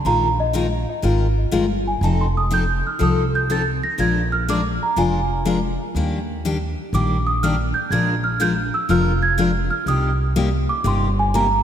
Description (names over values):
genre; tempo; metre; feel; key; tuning
acoustic string swing (jazz manouche); 122 BPM; 4/4; swing 66% on 8ths; unclear; A4 = 440 Hz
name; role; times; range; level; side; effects
small celesta; melody; 0.0-11.6 s; Eb5 to Bb6; -22 LUFS; right 3 dB; tape echo
picked steel-string acoustic guitar; accompaniment; 0.0-11.5 s; C3 to Bb4; -22 LUFS; left 4 dB; none
upright bass; bass; 0.1-11.6 s; F1 to Eb2; -22 LUFS; right 1 dB; none
room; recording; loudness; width
moderate lush hall reverb, RT60 2.6 s; dreamy mix soaked in reverb; -18 LUFS; side -9 dB against mid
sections
0.0-11.6 A section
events
celesta solo 0.0-11.6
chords
0.0 Bb7sus4; 2.0 F7; 4.0 Bb7; 5.9 Ebmaj7; 7.9 Bb7; 9.9 Cm7